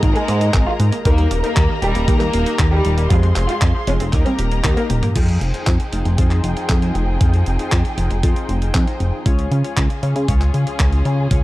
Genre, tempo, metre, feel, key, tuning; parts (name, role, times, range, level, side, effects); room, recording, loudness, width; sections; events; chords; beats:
italo disco; 117 BPM; 4/4; straight; F minor; A4 = 441 Hz
warm studio violin section; melody; 0.0-5.1 s; G3 to Bb4; -23 LUFS; equal; tape echo
muted studio string section; sustained chords; 0.0-11.4 s; F3 to C6; -27 LUFS; left 1 dB
analog pluck; arpeggios; 0.0-5.2 s; Eb3 to Ab4; -30 LUFS; right 3 dB; chorus, analog delay
chorused polysynth; stabs; 0.0-11.4 s; Ab3 to Db5; -29 LUFS; left 3 dB; vintage 12-bit sampler grit
chorused synth bass; bass; 0.0-11.4 s; Eb1 to Db3; -18 LUFS; equal; tube saturation
clean 12-bit digital drum machine; drums; 0.0-11.4 s; crash cymbal, handclaps, hi-hat, toms; -26 LUFS; equal
electronic kick drum; drums; 0.0-11.4 s; -18 LUFS; equal
little or no reverb; dry, gritty hardware recording, cassette tape; -15 LUFS; side -17 dB against mid
0.0-5.2 A section; 5.2-11.4 B section
drum fill 4.9
0.0 Absus2; 1.1 Eb; 3.1 Fm; 4.1 Eb; 5.2 Fm7; 9.3 Db
0.03 0.54 | 1.05 1.57 2.08 2.59 | 3.10 3.62 4.13 4.64 | 5.16 5.67 6.18 6.70 | 7.21 7.72 8.23 8.75 | 9.26 9.77 10.29 10.80 | 11.31